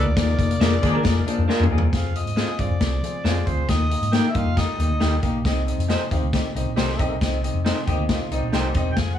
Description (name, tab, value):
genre	uptempo 1960s-style soul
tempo	136 BPM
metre	4/4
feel	straight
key	unclear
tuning	A4 = 440 Hz
part	overdriven harmonica	melody	0.0-5.2, 8.9-9.2 s	C5 to Ab5	-28 LUFS	left 1 dB	plate reverb
part	warm grand piano	accompaniment	0.0-9.1 s	C3 to F5	-27 LUFS	left 3 dB	none
part	tonewheel organ	sustained chords	0.0-1.9, 9.0-9.2 s	Eb3 to F4	-33 LUFS	left 1 dB	slow rotary speaker
part	vintage muted picked electric bass	bass	0.0-9.2 s	Fb1 to F3	-23 LUFS	equal	none
part	vintage drum kit	drums	0.2-9.1 s	hi-hat, kick drum, snare drum, toms	-24 LUFS	left 1 dB	none
part	mellow horn section	second line	0.6-8.9 s	Eb3 to Ab4	-33 LUFS	right 1 dB	none
part	electric guitar through a small old amp	stabs	0.6-8.7 s	Bb3 to C5	-27 LUFS	right 3 dB	none
part	electric guitar through a small old amp	riff	1.3-5.2, 7.9-8.9 s	F3 to Ab4	-32 LUFS	left 3 dB	none
room	moderate small room reverb, RT60 0.5 s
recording	none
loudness	-19 LUFS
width	side -10 dB against mid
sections	0.0-1.9 A section; 1.9-9.2 B section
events	band accent 0.2-1.9; drum fill 1.5-1.9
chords	0.0 Bb7; 1.9 Fm; 3.7 Eb; 5.5 Cm